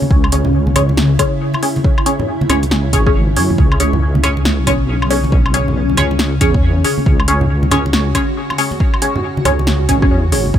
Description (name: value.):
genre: deep dubstep.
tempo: 138 BPM.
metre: 4/4.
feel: swing 62% on 16ths, half-time.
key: C# minor.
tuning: A4 = 441 Hz.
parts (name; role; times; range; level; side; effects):
granular cloud pad; sustained chords; 0.0-10.6 s; C#3 to F#4; -21 LUFS; left 1 dB; built-in reverb.
filtered dub chord stab; stabs; 0.0-10.5 s; C#4 to C#5; -18 LUFS; equal; phaser, lush chorus, dub echo.
congas; percussion; 0.0-10.5 s; none; -22 LUFS; right 2 dB; none.
deep soft wobble bass; bass; 0.1-10.6 s; G#1 to F#2; -16 LUFS; equal; chorus.
electronic kick drum; drums; 0.1-10.6 s; none; -15 LUFS; equal; overdrive.
deep house drum kit; drums; 0.2-10.4 s; hi-hat, snare drum, woodblock; -20 LUFS; equal; overdrive.
room: little or no reverb.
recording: none.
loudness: -12 LUFS.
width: side -10 dB against mid.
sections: 0.0-10.6 A section.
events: none.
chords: 0.0 C#5.